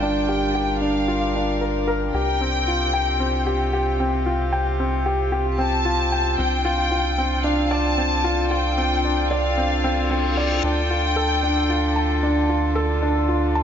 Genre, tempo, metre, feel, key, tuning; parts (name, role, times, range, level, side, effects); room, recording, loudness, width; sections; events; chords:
electronica; 113 BPM; 4/4; straight; A4 = 440 Hz
rich studio violin section; melody; 0.0-12.5 s; F5 to A5; -26 LUFS; left 2 dB; shimmer reverb
warm string quartet; sustained chords; 0.0-13.6 s; C3 to Bb4; -27 LUFS; equal; shimmer reverb
felt-muted upright piano; riff; 0.0-13.6 s; C4 to A5; -23 LUFS; left 1 dB; low-pass filter, shimmer reverb, ping-pong delay
round analog bass; bass; 0.0-13.6 s; G1 to D2; -25 LUFS; equal
reverse cymbal; sound effects; 9.9-10.6 s; -30 LUFS; left 6 dB
moderate concert hall reverb, RT60 2.4 s; nothing above 7.6 kHz; -19 LUFS; side -8 dB against mid
0.0-13.6 A section
filter sweep on felt piano 0.0-13.6; reverse cymbal 9.9-10.6
0.0 Gm7; 2.1 Csus4; 6.4 F6/C; 10.6 Dm